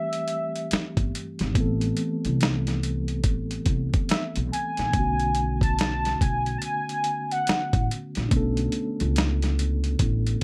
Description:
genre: R&B, neo-soul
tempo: 71 BPM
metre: 4/4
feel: swing 62% on 16ths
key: unclear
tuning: A4 = 440 Hz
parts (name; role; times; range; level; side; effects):
- warm velvety synth lead; melody; 0.0-7.9 s; E5 to A5; -30 LUFS; equal; chorus, slapback echo
- mellow tine electric piano; accompaniment; 0.0-10.4 s; D3 to A4; -33 LUFS; equal; none
- dusty soul sampler-style drum kit; drums; 0.1-10.4 s; hi-hat, kick drum, snare drum; -28 LUFS; equal; overdrive
- upright bass; bass; 0.7-10.3 s; G1 to C#2; -29 LUFS; equal; none
room: little or no reverb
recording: none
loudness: -25 LUFS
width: mono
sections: 0.0-10.4 A section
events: none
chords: 0.0 Am9; 4.9 Bm9

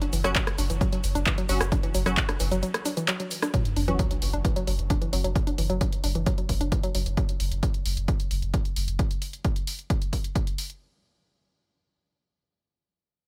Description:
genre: driving peak-time techno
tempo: 132 BPM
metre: 4/4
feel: straight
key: unclear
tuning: A4 = 440 Hz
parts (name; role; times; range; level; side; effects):
- woody wave-folded pluck; riff; 0.0-7.0 s; E3 to D4; -34 LUFS; equal; chorus, sidechain pumping, digital delay
- punchy analog drum machine; drums; 0.0-10.8 s; handclaps, hi-hat, rim click, shaker; -33 LUFS; equal; none
- warm sub bass; bass; 0.1-9.0 s; F#1; -30 LUFS; equal; sidechain pumping, low-pass filter
- wavetable chord stab; stabs; 0.2-5.2 s; F#3 to F#4; -37 LUFS; equal; sidechain pumping, digital delay
- electronic kick drum; drums; 0.4-10.4 s; none; -29 LUFS; equal; none
- sub drop; sound effects; 3.5-5.4 s; none; -37 LUFS; equal; none
room: little or no reverb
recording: none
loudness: -26 LUFS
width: mono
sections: 0.0-3.5 A section; 3.5-10.8 B section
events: drop 0.0-3.5; break 2.6-3.5; impact 3.5-5.4; filter sweep on synth stab 3.5-5.4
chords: 0.0 F#5

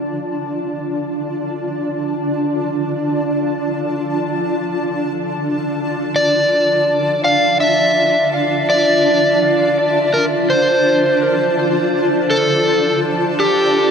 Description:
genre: ambient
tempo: 83 BPM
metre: 4/4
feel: swing 55% on 16ths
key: D minor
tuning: A4 = 439 Hz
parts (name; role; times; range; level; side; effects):
- granular cloud pad; sustained chords; 0.0-13.9 s; D4 to A5; -18 LUFS; equal; built-in reverb
- overdriven slide guitar; melody; 6.2-13.9 s; G4 to F5; -14 LUFS; equal; dub echo
room: wet huge ambient reverb, RT60 8.3 s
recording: none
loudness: -14 LUFS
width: side -6 dB against mid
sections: 0.0-13.9 A section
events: none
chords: 0.0 Dm

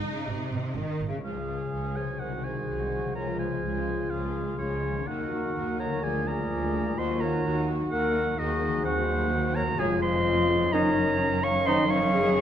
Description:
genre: classical, dramatic, fast romantic movement for symphony orchestra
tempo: 127 BPM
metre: 4/4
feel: straight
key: Db major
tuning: A4 = 435 Hz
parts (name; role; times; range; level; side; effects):
- warm studio violin section; melody; 0.0-12.4 s; Db4 to Eb5; -48 LUFS; left 2 dB; none
- rich symphonic violin section; second line; 0.0-12.4 s; Bb3 to F4; -43 LUFS; left 5 dB; none
- rich symphonic viola section; accompaniment; 0.0-12.4 s; Eb3 to Eb4; -39 LUFS; left 1 dB; none
- concert harp; arpeggios; 0.0-12.4 s; F2 to Eb5; -38 LUFS; left 8 dB; none
- dark symphonic double bass section; bass; 0.0-12.4 s; F1 to Eb2; -35 LUFS; right 3 dB; none
- warm symphonic cello section; bass; 0.0-12.4 s; C2 to Eb3; -33 LUFS; right 1 dB; none
- baroque flute; second line; 1.2-12.3 s; F4 to F5; -35 LUFS; left 1 dB; none
- clear oboe; second line; 1.2-12.4 s; Db5 to Db6; -31 LUFS; right 2 dB; none
- dark clarinet; second line; 1.2-12.4 s; Db4 to Db5; -36 LUFS; left 1 dB; none
- dark trombone section; sustained chords; 1.2-11.8 s; Db3 to Db4; -35 LUFS; right 4 dB; none
- dark trumpet section; stabs; 1.2-11.8 s; Eb4 to Ab4; -37 LUFS; right 2 dB; none
- mellow French horn section; sustained chords; 2.2-12.4 s; Db4 to Bb4; -31 LUFS; left 4 dB; none
room: wet recital hall reverb, RT60 1.7 s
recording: none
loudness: -25 LUFS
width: side -9 dB against mid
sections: 0.0-1.3 A section; 1.3-12.4 B section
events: none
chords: 0.0 Ab; 1.3 Db; 2.2 Ab7/C; 3.2 Db; 5.1 Ebm; 6.0 Bb7/D; 7.0 Ebm; 8.9 Cdim/Eb; 9.8 Db/F; 10.7 Ebm7/Gb

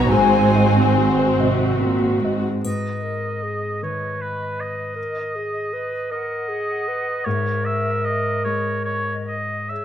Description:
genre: cinematic, emotional film score for orchestra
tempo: 46-53 BPM (dotted quarters)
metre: 6/8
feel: rubato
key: unclear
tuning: A4 = 440 Hz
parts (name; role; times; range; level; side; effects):
- muted studio violin section; melody; 0.0-2.0 s; B4 to B#4; -30 LUFS; left 2 dB; none
- flute section; second line; 0.0-9.8 s; C#5 to A#5; -27 LUFS; left 4 dB; none
- muted studio violin section; second line; 0.0-1.4 s; B#4; -26 LUFS; left 2 dB; none
- dark grand piano; accompaniment; 0.0-9.8 s; G#2 to D#5; -24 LUFS; left 2 dB; none
- muted studio viola section; accompaniment; 0.0-2.4 s; B3 to F#4; -22 LUFS; right 2 dB; none
- muted studio cello section; bass; 0.0-2.6 s; G#2 to B#2; -21 LUFS; right 2 dB; none
- muted studio double bass section; bass; 0.0-2.4 s; G#1; -25 LUFS; right 5 dB; none
- clear oboe; second line; 2.6-9.8 s; B4 to E5; -26 LUFS; right 1 dB; none
- warm clarinet; second line; 2.6-9.8 s; G#4 to B4; -28 LUFS; equal; none
- triangle; percussion; 2.6-4.2 s; none; -40 LUFS; left 4 dB; none
room: moderate scoring stage reverb, RT60 1.6 s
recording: none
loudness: -19 LUFS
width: side -9 dB against mid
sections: 0.0-2.6 A section; 2.6-9.8 B section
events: none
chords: 0.1 G#7; 2.6 G#m; 7.3 C#m/G#

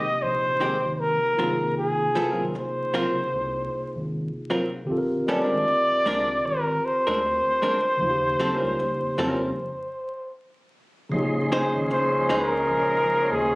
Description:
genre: R&B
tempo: 77 BPM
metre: 4/4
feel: swing 58% on 16ths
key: Bb dorian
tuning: A4 = 440 Hz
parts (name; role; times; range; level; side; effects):
- breathy flugelhorn; melody; 0.0-13.6 s; Ab4 to Eb5; -23 LUFS; equal; none
- vintage hollow-body jazz guitar; second line; 0.0-12.5 s; Eb3 to C5; -26 LUFS; equal; none
- mellow tine electric piano; accompaniment; 0.0-13.6 s; C3 to Bb4; -30 LUFS; equal; fast stereo tremolo
- round analog bass; bass; 0.0-13.6 s; Gb1 to F2; -34 LUFS; equal; none
- tonewheel organ; sustained chords; 11.1-13.6 s; Db4 to C6; -30 LUFS; equal; slow rotary speaker, overdrive, chorus vibrato
- bright trombone section; stabs; 11.1-13.6 s; F3 to Db4; -30 LUFS; left 1 dB; none
room: light reverb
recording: recorded on a phone in the room, studio reverb, vinyl crackle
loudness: -22 LUFS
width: side -24 dB against mid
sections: 0.0-11.1 A section; 11.1-13.6 B section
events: stop 9.6-11.1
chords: 0.0 Fm9; 1.4 Ab13; 4.9 Bb9; 8.0 Eb9; 10.3 N.C.; 11.1 Bbm11

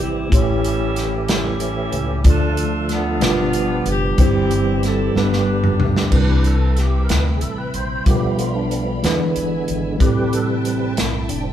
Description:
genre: slow gospel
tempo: 62 BPM (dotted quarters)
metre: 6/8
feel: straight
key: C major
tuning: A4 = 440 Hz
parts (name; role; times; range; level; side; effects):
- clear saxophone section; melody; 0.0-6.1 s; G3 to B4; -24 LUFS; right 1 dB; none
- mellow tine electric piano; accompaniment; 0.0-11.5 s; G2 to E5; -21 LUFS; equal; medium stereo tremolo
- tonewheel organ; sustained chords; 0.0-11.5 s; C3 to C5; -25 LUFS; right 3 dB; slow rotary speaker, overdrive, chorus vibrato
- upright bass; bass; 0.0-11.5 s; F1 to E2; -23 LUFS; equal; none
- natural country drum kit; drums; 0.3-11.4 s; crash cymbal, hi-hat, kick drum, snare drum, toms; -20 LUFS; equal; none
- warm studio string section; sustained chords; 6.1-11.5 s; C4 to B5; -33 LUFS; left 1 dB; none
room: moderate stone room reverb, RT60 1.4 s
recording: band playing live in one room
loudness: -16 LUFS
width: side -10 dB against mid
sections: 0.0-6.1 A section; 6.1-11.5 B section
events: drum fill 5.2-6.1; tonewheel organ solo 6.1-11.5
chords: 0.3 A7; 2.3 Dm; 3.2 G7; 4.2 C/G; 5.2 G; 6.1 Cmaj7; 8.1 G7/B; 9.0 E7; 10.0 Am7

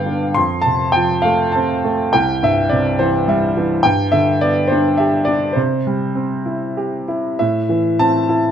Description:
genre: classical, lyrical solo piano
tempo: 95-108 BPM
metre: 3/4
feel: rubato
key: C major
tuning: A4 = 443 Hz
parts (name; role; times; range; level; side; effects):
- clear upright piano; solo; 0.0-8.5 s; C2 to C6; -14 LUFS; equal; none
room: light reverb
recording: close, detailed microphones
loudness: -14 LUFS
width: side -8 dB against mid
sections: 0.0-7.4 A section; 7.4-8.5 B section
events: none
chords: 0.4 F; 2.1 C; 3.8 G; 5.6 C; 7.4 Am

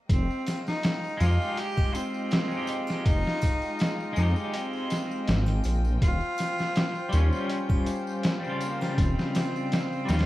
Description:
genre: trip hop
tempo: 81 BPM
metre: 4/4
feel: swing 54% on 16ths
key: F minor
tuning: A4 = 440 Hz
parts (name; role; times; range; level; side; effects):
- bright cello; melody; 0.1-10.3 s; Bb3 to G4; -32 LUFS; equal; tape echo
- warm studio string section; sustained chords; 0.1-10.3 s; Ab3 to G5; -37 LUFS; equal; none
- dark detuned saw bass; bass; 0.1-10.3 s; Eb1 to F2; -24 LUFS; equal; none
- trip hop sampler-style drum kit; drums; 0.1-10.3 s; hi-hat, kick drum, snare drum; -27 LUFS; equal; overdrive
- tambourine and triangle; percussion; 0.1-10.2 s; none; -49 LUFS; left 4 dB; none
- electric guitar at the edge of break-up; accompaniment; 1.2-10.3 s; Db3 to C5; -33 LUFS; left 1 dB; tremolo
room: studio ambience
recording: dark, warm production, vinyl crackle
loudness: -24 LUFS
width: side -16 dB against mid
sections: 0.1-10.3 A section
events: none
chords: 0.1 Fm9; 6.0 Eb13

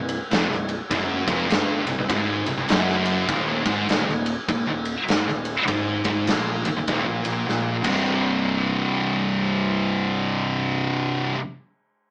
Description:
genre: stoner and doom metal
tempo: 100 BPM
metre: 4/4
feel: swing 62% on 8ths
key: C minor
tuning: A4 = 438 Hz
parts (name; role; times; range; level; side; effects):
- thick fuzz guitar; riff; 0.0-11.4 s; C2 to C3; -27 LUFS; equal; distortion
- thick fuzz guitar; riff; 0.0-11.4 s; C2 to C3; -32 LUFS; equal; distortion
- thick fuzz guitar; riff; 0.0-11.4 s; C2 to C3; -32 LUFS; equal; distortion
- growling fingered electric bass; bass; 0.0-10.9 s; C1 to Bb1; -33 LUFS; equal; overdrive
- big rock drum kit; drums; 0.1-8.0 s; crash cymbal, kick drum, ride cymbal, snare drum; -28 LUFS; equal; none
room: moderate studio ambience, RT60 0.5 s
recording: band playing live in one room, small speaker sound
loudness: -23 LUFS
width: mono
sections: 0.0-8.1 A section; 8.1-10.5 B section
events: drum fill 7.5-8.1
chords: 0.0 C5; 3.3 Eb5; 7.8 C5

